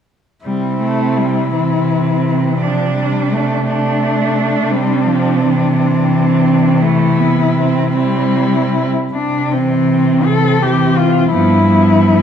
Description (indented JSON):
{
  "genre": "classical, lyrical piece for cello ensemble",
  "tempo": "48-59 BPM (dotted quarters)",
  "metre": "6/8",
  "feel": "rubato",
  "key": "C major",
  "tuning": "A4 = 440 Hz",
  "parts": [
    { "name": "rich cello", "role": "melody", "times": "0.4-12.2 s", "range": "C4 to A4", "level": "-18 LUFS", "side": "left 6 dB", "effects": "none" },
    { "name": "warm cello", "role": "accompaniment", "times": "0.4-12.2 s", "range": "E3 to A3", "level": "-17 LUFS", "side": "left 4 dB", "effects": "none" },
    { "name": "clear cello", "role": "second line", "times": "0.5-12.2 s", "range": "A3 to D4", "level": "-18 LUFS", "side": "right 7 dB", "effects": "none" },
    { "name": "rich cello", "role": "bass", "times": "0.5-12.2 s", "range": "G2 to C3", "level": "-17 LUFS", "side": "right 3 dB", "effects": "none" }
  ],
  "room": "wet recital hall reverb, RT60 1.4 s",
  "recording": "dark, warm production",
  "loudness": "-12 LUFS",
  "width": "side -8 dB against mid",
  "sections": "0.5-9.1 A section; 9.1-12.2 B section",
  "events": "none",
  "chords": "0.5 C; 2.6 G5/C; 4.7 C; 11.3 G7",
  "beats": "| 0.45 1.53 | 2.61 3.67 | 4.71 5.74 | 6.81 7.92 | 9.13 10.26 | 11.31"
}